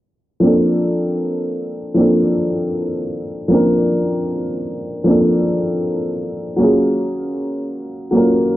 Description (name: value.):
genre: hip hop.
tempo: 78 BPM.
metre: 4/4.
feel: swing 63% on 16ths.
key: Bb major.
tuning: A4 = 440 Hz.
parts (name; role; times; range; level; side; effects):
clear upright piano; accompaniment; 0.4-8.6 s; F3 to Bb4; -15 LUFS; equal; low-pass filter.
room: light reverb, small room ambience.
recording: dry, gritty hardware recording, low-pass filter.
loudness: -15 LUFS.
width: side -15 dB against mid.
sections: 0.4-8.6 A section.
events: filter sweep 0.4-8.6.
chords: 0.4 Bbmaj9; 6.6 Gbmaj9.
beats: | 0.44 1.21 1.97 2.74 | 3.51 4.28 5.05 5.82 | 6.59 7.36 8.13.